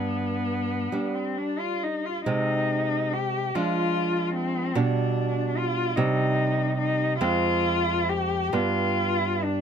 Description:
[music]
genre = romantic duo for cello and classical guitar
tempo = 43-51 BPM (dotted quarters)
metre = 6/8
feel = rubato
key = unclear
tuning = A4 = 435 Hz
[part]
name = warm cello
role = melody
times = 0.0-9.6 s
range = B3 to G4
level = -26 LUFS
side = left 3 dB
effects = none
[part]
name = nylon-string guitar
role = accompaniment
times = 0.0-9.6 s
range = F2 to D4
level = -26 LUFS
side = right 3 dB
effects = none
[sound]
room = little or no reverb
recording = close, detailed microphones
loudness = -23 LUFS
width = side -7 dB against mid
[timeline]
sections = 0.0-9.6 A section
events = none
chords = 0.0 G; 2.3 Ab/C; 3.5 Ddim/F; 4.8 G/B; 6.0 Cm; 7.2 Fm; 8.5 G7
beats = 0.91 | 2.26 3.54 | 4.75 5.97 | 7.20 8.53

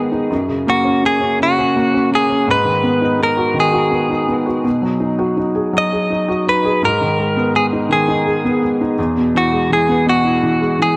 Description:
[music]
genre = pop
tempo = 55 BPM (dotted quarters)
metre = 6/8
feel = straight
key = unclear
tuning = A4 = 440 Hz
[part]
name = felt-muted upright piano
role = accompaniment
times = 0.0-11.0 s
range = E2 to G#4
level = -19 LUFS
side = equal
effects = none
[part]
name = direct-recorded clean electric guitar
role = melody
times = 0.7-11.0 s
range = F#4 to D#5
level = -19 LUFS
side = equal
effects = vibrato effect, tape echo
[sound]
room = light reverb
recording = dark, warm production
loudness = -16 LUFS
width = mono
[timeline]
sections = 0.0-11.0 A section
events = none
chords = 0.3 F#; 2.5 G#m7; 4.7 B6; 6.8 G#madd9; 9.0 Eadd9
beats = | 0.31 1.39 | 2.48 3.56 | 4.65 5.75 | 6.83 7.91 | 8.98 10.06

